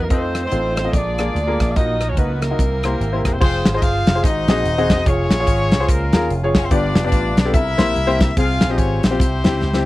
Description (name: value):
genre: uptempo gospel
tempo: 145 BPM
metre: 4/4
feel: swing 60% on 8ths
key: F minor from 3.4 s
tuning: A4 = 440 Hz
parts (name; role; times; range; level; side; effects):
- bright alto saxophone; melody; 0.0-3.3 s; Ab4 to F5; -26 LUFS; right 4 dB; none
- clear horn section; melody; 0.0-9.9 s; Bb3 to F5; -23 LUFS; left 1 dB; none
- clear grand piano; accompaniment; 0.0-9.9 s; G2 to Eb5; -22 LUFS; left 2 dB; none
- warm studio string section; sustained chords; 0.0-3.4 s; Gb3 to Gb4; -32 LUFS; right 2 dB; none
- slap bass with an envelope filter; bass; 0.0-9.8 s; Eb1 to F2; -22 LUFS; equal; none
- modern studio drum kit; drums; 0.1-9.8 s; crash cymbal, hi-hat, kick drum, rim click, snare drum; -17 LUFS; equal; none
room: little or no reverb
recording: dry, close 1970s-style studio recording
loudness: -15 LUFS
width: side -17 dB against mid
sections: 0.0-3.4 A section; 3.4-9.9 B section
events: drum fill 9.6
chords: 0.1 F7; 0.9 Bb7; 1.8 Ebm/Bb; 2.6 C7; 3.4 Fm; 4.2 Ab7; 5.1 Db/F; 6.7 G7; 7.5 C7; 8.4 Fm; 9.2 C